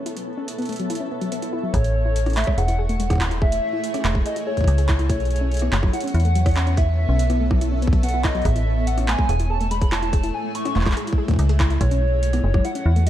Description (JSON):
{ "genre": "IDM", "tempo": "143 BPM", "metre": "4/4", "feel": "straight", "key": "A major", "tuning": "A4 = 439 Hz", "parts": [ { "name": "granular cloud pad", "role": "sustained chords", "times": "0.0-13.1 s", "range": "G#3 to F#5", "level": "-29 LUFS", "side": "equal", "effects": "built-in reverb, vintage 12-bit sampler grit" }, { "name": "soft round pluck", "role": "arpeggios", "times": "0.0-13.1 s", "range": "F#3 to G#4", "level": "-29 LUFS", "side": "left 2 dB", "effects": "chorus, cassette tape, digital delay" }, { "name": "electro analog drum machine", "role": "drums", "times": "0.1-13.1 s", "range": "handclaps, hi-hat, rim click", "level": "-29 LUFS", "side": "equal", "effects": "overdrive" }, { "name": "warbly nostalgic lead", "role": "melody", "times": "1.7-13.1 s", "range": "C#5 to C#6", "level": "-27 LUFS", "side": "equal", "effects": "wide subtle chorus, cassette tape, tape echo" }, { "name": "metallic FM bass", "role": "bass", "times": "1.7-13.1 s", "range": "E1 to E2", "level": "-20 LUFS", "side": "equal", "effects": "tube saturation" }, { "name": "electronic kick drum", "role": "drums", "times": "1.7-12.6 s", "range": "none", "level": "-20 LUFS", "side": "equal", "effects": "none" } ], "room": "light reverb", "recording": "dark, warm production", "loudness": "-18 LUFS", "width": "side -12 dB against mid", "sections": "0.0-1.7 A section; 1.7-13.1 B section", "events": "none", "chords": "0.0 B9sus4; 1.7 Amaj7; 5.1 B9sus4; 8.5 Amaj7; 11.8 B9sus4" }